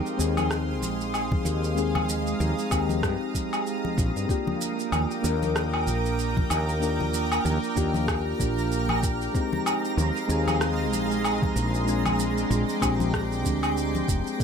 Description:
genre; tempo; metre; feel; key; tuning
sunset chillout; 95 BPM; 4/4; swing 58% on 16ths; Eb major; A4 = 439 Hz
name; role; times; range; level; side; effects
soft electric-piano-like synth keys; accompaniment; 0.0-14.4 s; Ab3 to Bb4; -28 LUFS; moving between left 6 dB and right 5 dB; chorus, auto-pan, digital delay
shimmering ambient pad; sustained chords; 0.0-14.4 s; Ab3 to F6; -32 LUFS; equal; chorus, built-in reverb
electronic shaker, woodblock and rim click; drums; 0.1-14.4 s; none; -30 LUFS; equal; none
woody fretless electric bass; bass; 0.2-14.2 s; F1 to G2; -28 LUFS; equal; none
congas; percussion; 0.4-14.1 s; none; -35 LUFS; left 4 dB; none
electronic kick drum; drums; 1.3-14.4 s; none; -28 LUFS; equal; none
twinkling granular texture; texture; 4.3-14.4 s; Bb5; -36 LUFS; right 2 dB; built-in reverb
room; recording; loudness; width
digital ambience; none; -23 LUFS; side -7 dB against mid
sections
0.0-14.4 A section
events
none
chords
0.0 Fm7; 4.3 Ebmaj7; 9.3 Fm7/Eb; 11.9 Bb13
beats
0.50 1.14 | 1.77 2.40 3.03 3.66 | 4.29 4.92 5.56 6.19 | 6.82 7.45 8.08 8.71 | 9.35 9.98 10.61 11.24 | 11.87 12.50 13.13 13.77 | 14.40

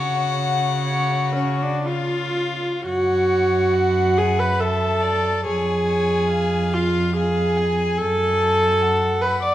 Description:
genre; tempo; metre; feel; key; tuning
classical, slow romantic movement for string quartet; 56-76 BPM; 3/4; rubato; F# minor; A4 = 440 Hz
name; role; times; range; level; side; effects
rich violin; melody; 0.0-9.5 s; C#5 to D6; -29 LUFS; left 9 dB; none
rich violin; second line; 0.0-9.5 s; E#4 to G#5; -28 LUFS; left 4 dB; none
rich viola; accompaniment; 0.0-9.5 s; C#4 to D5; -20 LUFS; right 1 dB; none
warm cello; bass; 0.0-9.5 s; E#2 to C#3; -24 LUFS; right 1 dB; none
room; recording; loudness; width
moderate recital hall reverb, RT60 1.4 s; vinyl crackle; -18 LUFS; side -13 dB against mid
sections
0.0-2.9 A section; 2.9-9.5 B section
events
none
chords
0.0 F#5/C#; 1.9 C#; 2.9 F#m; 5.5 C#/E#; 8.0 F#m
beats
0.82 1.87 | 2.86 3.74 4.60 | 5.46 6.31 7.16 | 8.00 8.82

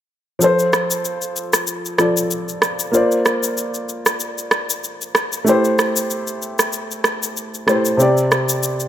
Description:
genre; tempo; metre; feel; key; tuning
afrobeats; 95 BPM; 4/4; swing 55% on 16ths; unclear; A4 = 440 Hz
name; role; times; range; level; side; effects
dark grand piano; accompaniment; 0.4-8.9 s; C3 to D5; -18 LUFS; equal; none
electronic shaker and rim click; drums; 0.4-8.9 s; none; -20 LUFS; equal; none
room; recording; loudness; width
light reverb, studio ambience; none; -16 LUFS; side -11 dB against mid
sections
0.4-8.9 A section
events
none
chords
0.4 F; 2.9 Bbadd9; 5.5 Am7; 8.0 Csus2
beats
| 0.42 1.05 1.68 2.31 | 2.94 3.57 4.21 4.84 | 5.47 6.10 6.73 7.36 | 8.00 8.63

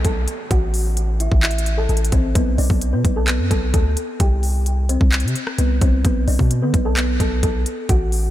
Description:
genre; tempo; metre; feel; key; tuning
hip hop, trap; 130 BPM; 4/4; half-time; B phrygian; A4 = 440 Hz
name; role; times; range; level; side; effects
kalimba; melody; 0.0-8.3 s; B3 to A5; -24 LUFS; left 1 dB; low-pass filter, diffuse ambient delay
long sustained 808-style bass; bass; 0.0-8.3 s; A1 to D3; -19 LUFS; equal; none
trap drum kit; drums; 0.0-8.2 s; handclaps, hi-hat, kick drum, rim click; -20 LUFS; equal; none
downlifter; sound effects; 0.0-2.4 s; none; -38 LUFS; equal; none
room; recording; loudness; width
light reverb; none; -16 LUFS; side -14 dB against mid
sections
0.0-8.3 A section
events
none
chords
0.0 B7(no3); 0.5 Am; 2.4 Bm7; 4.2 C5; 6.0 Bm7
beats
0.05 | 0.51 0.97 1.43 1.89 | 2.35 2.81 3.28 3.74 | 4.20 4.66 5.12 5.58 | 6.05 6.51 6.97 7.43 | 7.89

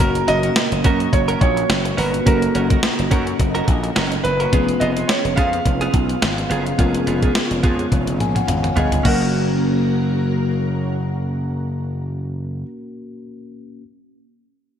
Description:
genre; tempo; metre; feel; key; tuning
1980s-style pop; 106 BPM; 4/4; swing 55% on 16ths; F# major; A4 = 442 Hz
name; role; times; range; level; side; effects
warm concert grand piano; melody; 0.0-12.6 s; A#4 to F#5; -23 LUFS; right 2 dB; none
mellow tine electric piano; accompaniment; 0.0-13.8 s; A#3 to G#5; -25 LUFS; left 3 dB; wide subtle chorus
ensemble organ-string; sustained chords; 0.0-12.1 s; A#2 to A#4; -25 LUFS; right 1 dB; phaser, ensemble chorus
direct-recorded clean electric guitar; riff; 0.0-12.7 s; B3 to A#4; -27 LUFS; right 3 dB; wide subtle chorus
gritty slap bass; bass; 0.0-12.6 s; E#1 to F#2; -23 LUFS; equal; overdrive
clean 12-bit digital drum machine; drums; 0.0-9.2 s; crash cymbal, hi-hat, kick drum, snare drum, toms; -20 LUFS; equal; gated reverb
room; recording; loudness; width
moderate lush hall reverb, RT60 1.8 s, digital ambience; bright 1980s-style digital production; -16 LUFS; side -9 dB against mid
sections
0.0-9.1 A section; 9.1-11.3 B section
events
drum fill 7.9-9.1; tine electric piano fill 7.9-9.1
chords
0.0 F#; 4.5 C#7/E#; 9.1 F#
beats
| 0.00 0.56 1.13 1.69 | 2.26 2.83 3.39 3.96 | 4.52 5.09 5.66 6.22 | 6.79 7.35 7.92 8.49 | 9.05 9.62 10.18 10.75

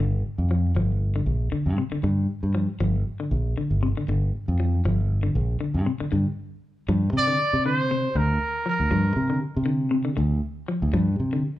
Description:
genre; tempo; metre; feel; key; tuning
afrobeat; 118 BPM; 4/4; swing 55% on 16ths; G minor; A4 = 441 Hz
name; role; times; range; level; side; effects
semi-hollow electric guitar; arpeggios; 0.0-11.5 s; C3 to F3; -28 LUFS; left 2 dB; none
fingered electric bass; bass; 0.0-11.4 s; G1 to C3; -23 LUFS; equal; none
clear trumpet; melody; 7.2-9.4 s; Bb4 to D5; -24 LUFS; right 1 dB; none
room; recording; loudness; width
moderate large studio reverb, RT60 1.1 s; band playing live in one room; -22 LUFS; side -15 dB against mid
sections
0.0-6.9 A section; 6.9-11.6 B section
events
stop 6.4-6.9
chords
0.0 G7(no3); 6.9 Gm7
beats
0.26 | 0.77 1.28 1.79 2.30 | 2.81 3.32 3.83 4.34 | 4.85 5.36 5.87 6.38 | 6.88 7.39 7.90 8.41 | 8.91 9.42 9.93 10.44 | 10.95 11.45

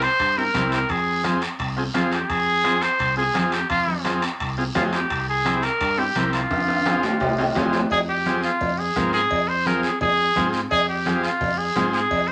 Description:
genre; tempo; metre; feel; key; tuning
latin, cumbia; 171 BPM; 4/4; straight; F harmonic minor, F minor from 7.9 s; A4 = 440 Hz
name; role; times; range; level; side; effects
clear trumpet; melody; 0.0-12.3 s; F4 to C5; -24 LUFS; equal; none
combo organ; accompaniment; 0.0-12.0 s; C4 to Bb4; -27 LUFS; equal; none
fingered electric bass; bass; 0.0-12.3 s; C2 to Ab2; -32 LUFS; equal; none
guiro; percussion; 0.0-12.3 s; none; -37 LUFS; equal; none
timbales and cowbell; percussion; 0.0-12.3 s; none; -30 LUFS; equal; none
bombo; percussion; 0.2-12.3 s; none; -38 LUFS; equal; none
congas; percussion; 0.5-11.9 s; none; -33 LUFS; equal; none
room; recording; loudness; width
wet studio reverb, RT60 0.5 s; none; -22 LUFS; mono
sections
0.0-7.9 A section; 7.9-12.3 B section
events
drum fill 6.5-7.9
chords
0.0 C7; 0.9 Fm; 5.1 C7; 6.5 Fm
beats
0.20 0.55 | 0.90 1.25 1.60 1.95 | 2.30 2.65 3.00 3.35 | 3.70 4.05 4.40 4.75 | 5.10 5.45 5.80 6.16 | 6.50 6.86 7.21 7.56 | 7.91 8.26 8.61 8.96 | 9.31 9.66 10.01 10.36 | 10.71 11.06 11.41 11.76 | 12.11

